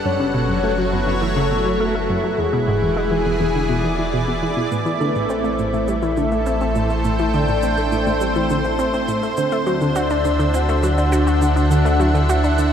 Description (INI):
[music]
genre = ambient, sequencer-driven space music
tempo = 103 BPM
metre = 4/4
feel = straight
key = A dorian from 4.7 s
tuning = A4 = 440 Hz
[part]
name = lush unison pad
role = sustained chords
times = 0.0-12.7 s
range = D3 to G5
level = -21 LUFS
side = equal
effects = chorus
[part]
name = round analog bass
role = bass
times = 0.0-12.7 s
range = E1 to D2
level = -23 LUFS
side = equal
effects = none
[part]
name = soft octave-layered synth lead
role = melody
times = 0.1-12.7 s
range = G#4 to F#5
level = -24 LUFS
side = left 1 dB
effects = chorus, phaser, tape echo
[part]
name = analog pluck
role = riff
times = 0.1-12.7 s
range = E2 to F#4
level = -22 LUFS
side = equal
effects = chorus, cassette tape, tape echo
[part]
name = shaker and woodblock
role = percussion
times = 4.7-12.7 s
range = none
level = -40 LUFS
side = right 3 dB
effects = none
[sound]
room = moderate huge ambient reverb, RT60 8.6 s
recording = none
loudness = -17 LUFS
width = side -8 dB against mid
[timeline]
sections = 0.0-4.7 A section; 4.7-12.7 B section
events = filter sweep on synth arpeggio sound 0.0-4.7; fade-in on drum 4.7-12.7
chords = 0.1 F#m7; 2.4 E7; 4.7 Am7; 9.4 D7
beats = | 0.06 0.64 1.22 1.80 | 2.38 2.97 3.55 4.13 | 4.71 5.30 5.88 6.46 | 7.04 7.63 8.21 8.79 | 9.38 9.96 10.54 11.12 | 11.71 12.29